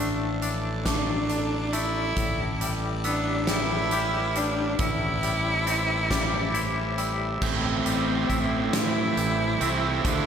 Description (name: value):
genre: post-rock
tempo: 46 BPM (dotted quarters)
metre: 6/8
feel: straight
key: A minor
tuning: A4 = 440 Hz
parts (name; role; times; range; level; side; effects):
- clear cello; melody; 0.0-10.3 s; C4 to E4; -28 LUFS; equal; slapback echo, analog delay
- icy glass pad; sustained chords; 0.0-10.3 s; F3 to C6; -37 LUFS; right 1 dB; chorus, built-in reverb
- glockenspiel with brass mallets; arpeggios; 0.0-10.3 s; D6 to G6; -35 LUFS; right 2 dB; slapback echo, analog delay
- twangy electric guitar; arpeggios; 0.0-10.3 s; A2 to G4; -33 LUFS; left 4 dB; tremolo, analog delay
- fuzz fingered electric bass; bass; 0.0-10.3 s; A1 to A2; -30 LUFS; equal; overdrive
- huge arena drum kit; drums; 0.4-10.3 s; crash cymbal, hi-hat, kick drum, snare drum; -30 LUFS; equal; none
- overdriven electric guitar; riff; 7.4-10.3 s; A2 to F4; -27 LUFS; right 7 dB; none
room: moderate concert hall reverb, RT60 2.1 s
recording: big arena sound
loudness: -23 LUFS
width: side -8 dB against mid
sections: 0.0-7.4 A section; 7.4-10.3 B section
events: none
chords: 0.0 Dm/A; 2.2 Gadd9/A; 4.8 C/A; 7.4 Am7